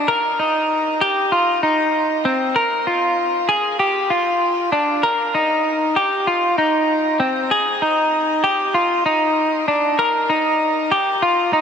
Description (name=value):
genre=dream pop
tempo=97 BPM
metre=4/4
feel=straight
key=Eb major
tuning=A4 = 440 Hz
part: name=semi-hollow electric guitar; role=solo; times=0.0-11.6 s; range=C4 to Bb4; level=-16 LUFS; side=equal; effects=analog chorus, ping-pong delay
room=wet shimmer reverb, RT60 6.7 s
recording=dark, warm production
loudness=-16 LUFS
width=side -7 dB against mid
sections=0.0-11.6 A section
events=none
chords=none